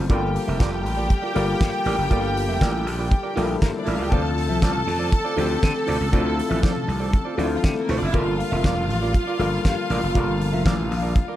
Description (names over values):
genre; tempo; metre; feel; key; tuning
disco; 119 BPM; 4/4; straight; unclear; A4 = 440 Hz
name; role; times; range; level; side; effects
clean electric guitar; accompaniment; 0.0-11.4 s; F4 to E5; -31 LUFS; right 8 dB; warbly pitch drift
warm grand piano; accompaniment; 0.0-11.4 s; D3 to F5; -27 LUFS; left 5 dB; none
gritty slap bass; bass; 0.0-11.2 s; F1 to D3; -25 LUFS; equal; overdrive
clear studio string section; second line; 0.1-11.4 s; F3 to A5; -27 LUFS; equal; none
damped 70s drum kit; drums; 0.1-11.3 s; hi-hat, kick drum, snare drum; -23 LUFS; equal; none
congas; percussion; 4.1-11.3 s; none; -32 LUFS; left 4 dB; none
room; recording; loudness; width
light reverb, studio reverb; dark, warm production; -20 LUFS; side -13 dB against mid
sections
0.0-11.4 A section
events
grand piano fill 11.2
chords
0.1 Gm7; 4.1 Dm7; 8.1 Gm7